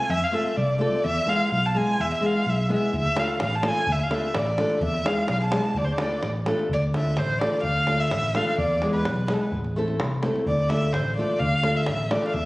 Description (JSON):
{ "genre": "balkan folk, Balkan wedding band", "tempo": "127 BPM", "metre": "2/4", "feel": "straight", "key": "D dorian sharp4", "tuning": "A4 = 440 Hz", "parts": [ { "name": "dark erhu", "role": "melody", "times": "0.0-12.5 s", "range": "A4 to A5", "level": "-25 LUFS", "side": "equal", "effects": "none" }, { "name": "flamenco guitar", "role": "accompaniment", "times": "0.0-12.3 s", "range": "G#3 to A4", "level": "-27 LUFS", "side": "left 1 dB", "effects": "none" }, { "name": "fingered electric bass", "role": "bass", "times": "0.1-12.5 s", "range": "A1 to F2", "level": "-27 LUFS", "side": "equal", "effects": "none" }, { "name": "davul", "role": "percussion", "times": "2.9-12.5 s", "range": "none", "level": "-31 LUFS", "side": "equal", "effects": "none" } ], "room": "moderate scoring stage reverb, RT60 1.6 s", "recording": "recorded on a phone in the room, studio reverb, compression", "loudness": "-21 LUFS", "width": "side -19 dB against mid", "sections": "0.0-6.7 A section; 6.7-12.5 B section", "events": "erhu solo 6.7-12.5", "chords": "0.0 F; 1.0 E; 2.9 Dm; 4.8 E; 5.8 Dm; 8.6 E; 9.5 Am; 10.5 Dm" }